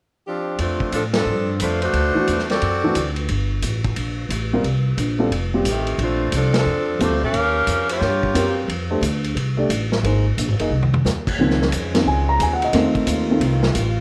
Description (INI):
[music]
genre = jazz, big band swing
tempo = 178 BPM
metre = 4/4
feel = swing 65% on 8ths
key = F major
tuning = A4 = 440 Hz
[part]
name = bright saxophone section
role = melody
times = 0.3-3.1, 5.7-8.5 s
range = Eb3 to F5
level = -23 LUFS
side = equal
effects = none
[part]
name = upright bass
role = bass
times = 0.6-14.0 s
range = F1 to A2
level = -24 LUFS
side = equal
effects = none
[part]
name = vintage drum kit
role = drums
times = 0.6-13.9 s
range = crash cymbal, hi-hat, kick drum, ride cymbal, snare drum, toms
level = -28 LUFS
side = equal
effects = none
[part]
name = warm concert grand piano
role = accompaniment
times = 2.1-13.4 s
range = Eb3 to Bb5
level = -23 LUFS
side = equal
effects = none
[part]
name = mellow saxophone section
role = sustained chords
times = 11.4-14.0 s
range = Db3 to F4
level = -30 LUFS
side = equal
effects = none
[sound]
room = light reverb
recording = none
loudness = -20 LUFS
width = mono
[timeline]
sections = 0.6-11.4 A section; 11.4-14.0 B section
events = band accent 1.1, 6.5; drum fill 10.7-11.1; grand piano solo 11.4-14.0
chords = 0.0 F5; 0.6 F6; 1.9 D7; 3.3 Gmadd9; 4.6 C5; 5.3 F9; 6.0 Bbmaj9; 7.3 Eb9; 8.7 F6; 10.0 Ab; 11.4 Dbmaj7; 12.7 F7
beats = 0.25 | 0.59 0.93 1.26 1.60 | 1.94 2.28 2.61 2.95 | 3.29 3.63 3.96 4.30 | 4.64 4.97 5.31 5.65 | 5.99 6.33 6.66 7.00 | 7.34 7.67 8.01 8.35 | 8.69 9.03 9.36 9.70 | 10.04 10.38 10.71 11.05 | 11.39 11.73 12.07 12.40 | 12.74 13.08 13.42 13.76